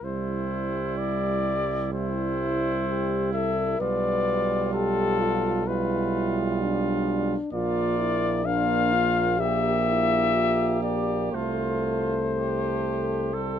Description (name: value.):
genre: classical, brass quintet.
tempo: 64 BPM.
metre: 4/4.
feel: rubato.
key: C major, F major from 7.5 s.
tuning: A4 = 445 Hz.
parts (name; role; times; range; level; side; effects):
mellow trumpet; melody; 0.0-13.6 s; A4 to F5; -27 LUFS; left 6 dB; none.
clear trumpet; second line; 0.0-13.6 s; E4 to A4; -33 LUFS; right 7 dB; none.
warm trombone; accompaniment; 0.0-13.6 s; G3 to Bb3; -30 LUFS; right 4 dB; none.
clear tuba; bass; 0.0-13.6 s; Bb1 to C2; -30 LUFS; right 4 dB; none.
mellow French horn; accompaniment; 1.9-13.6 s; D4 to B4; -29 LUFS; left 3 dB; none.
room: little or no reverb.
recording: close, detailed microphones.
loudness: -23 LUFS.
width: side -9 dB against mid.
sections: 0.0-13.6 A section.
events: none.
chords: 0.0 C; 3.8 G7/B; 7.5 Bb; 9.4 Gm/Bb; 11.3 F/C.